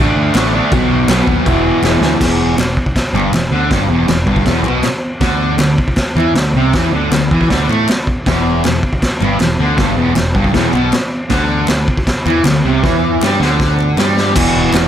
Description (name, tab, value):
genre	garage rock duo or trio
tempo	158 BPM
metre	4/4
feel	straight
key	E minor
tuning	A4 = 441 Hz
part	fuzz guitar	riff	0.0-14.9 s	E2 to D4	-14 LUFS	equal	distortion
part	growling picked electric bass	bass	0.0-14.9 s	E1 to A2	-18 LUFS	equal	overdrive
part	raw garage drum kit	drums	0.3-14.8 s	crash cymbal, kick drum, snare drum	-16 LUFS	equal	none
part	group handclap	percussion	0.3-14.8 s	none	-28 LUFS	left 4 dB	none
room	small room ambience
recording	none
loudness	-11 LUFS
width	side -10 dB against mid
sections	0.0-2.2 A section; 2.2-14.4 B section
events	drum fill 1.8-2.2, 12.8-14.4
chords	0.0 D5; 0.7 B5; 1.5 E5; 2.2 Em; 5.2 D5; 8.3 Em; 11.3 Cadd9 (rootless); 14.4 E5